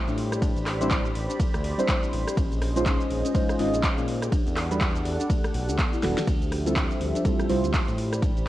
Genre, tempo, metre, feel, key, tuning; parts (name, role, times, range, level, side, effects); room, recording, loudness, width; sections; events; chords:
deep house; 123 BPM; 4/4; swing 59% on 16ths; D dorian; A4 = 440 Hz
dark analog pad; sustained chords; 0.0-8.5 s; F3 to B5; -33 LUFS; right 1 dB; chorus, sidechain pumping
warbly dusty pluck; arpeggios; 0.0-8.3 s; Ab3 to A4; -34 LUFS; left 4 dB; wide subtle chorus, sidechain pumping, analog delay
deep mellow chord stab; stabs; 0.0-8.0 s; G3 to Eb5; -28 LUFS; equal; chorus, phaser, cassette tape, sidechain pumping, analog delay
smooth synth bass; bass; 0.1-8.5 s; E1 to Bb2; -30 LUFS; equal; sidechain pumping
deep house drum kit; drums; 0.1-8.5 s; handclaps, hi-hat, ride cymbal, rim click, shaker, snare drum; -32 LUFS; equal; overdrive, small room ambience
electronic kick drum; drums; 0.4-8.3 s; -26 LUFS; equal; overdrive, small room ambience
light reverb; cassette tape; -22 LUFS; side -15 dB against mid
0.0-8.5 A section
drum fill 6.0
0.2 Am11; 2.4 Bbm11; 4.3 Em11; 6.3 Dm11; 8.0 Am11